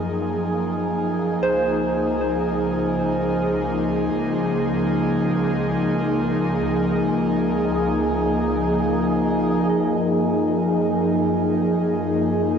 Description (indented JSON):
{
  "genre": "ambient",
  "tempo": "free time",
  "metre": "none",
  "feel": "none",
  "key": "Gb lydian",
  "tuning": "A4 = 440 Hz",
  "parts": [
    { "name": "airy breathy pad", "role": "sustained chords", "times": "0.0-12.6 s", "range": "Gb2 to Ab4", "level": "-20 LUFS", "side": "equal", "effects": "chorus" },
    { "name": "soft synth bell", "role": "arpeggios", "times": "0.0-12.6 s", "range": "C5 to Eb5", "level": "-28 LUFS", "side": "equal", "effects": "chorus, phaser, ping-pong delay" },
    { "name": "clear studio double bass section", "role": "bass", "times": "0.0-9.7 s", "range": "Db2 to Gb2", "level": "-30 LUFS", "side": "equal", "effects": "none" }
  ],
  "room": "wet lush hall reverb, RT60 2.9 s",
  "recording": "dreamy mix soaked in reverb, cassette tape, nothing above 7.8 kHz",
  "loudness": "-19 LUFS",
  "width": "side -7 dB against mid",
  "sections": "0.0-9.7 A section; 9.7-12.6 B section",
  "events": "none",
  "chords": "0.0 Gbmaj7; 1.4 Dbmaj9; 9.7 Gbmaj7"
}